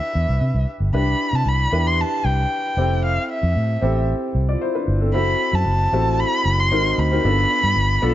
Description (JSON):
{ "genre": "polished 1980s jazz-funk pop", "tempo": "114 BPM", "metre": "4/4", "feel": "straight", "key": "unclear", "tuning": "A4 = 440 Hz", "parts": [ { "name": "dark erhu", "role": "melody", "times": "0.0-8.1 s", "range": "E5 to C6", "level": "-22 LUFS", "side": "equal", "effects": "none" }, { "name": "warm baby grand piano", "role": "accompaniment", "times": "0.0-8.1 s", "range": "B3 to D5", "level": "-24 LUFS", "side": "left 1 dB", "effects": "wide subtle chorus" }, { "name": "vintage muted fingered electric bass", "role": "bass", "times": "0.2-8.1 s", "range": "F1 to C3", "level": "-20 LUFS", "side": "equal", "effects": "none" } ], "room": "small room ambience", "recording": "nothing above 7.7 kHz", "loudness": "-17 LUFS", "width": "side -13 dB against mid", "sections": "0.9-8.1 A section", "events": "none", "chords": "0.0 Cmaj9; 0.9 Cmaj7; 2.8 Fmaj7; 5.1 F#m7b5; 6.7 G#9; 7.2 G7" }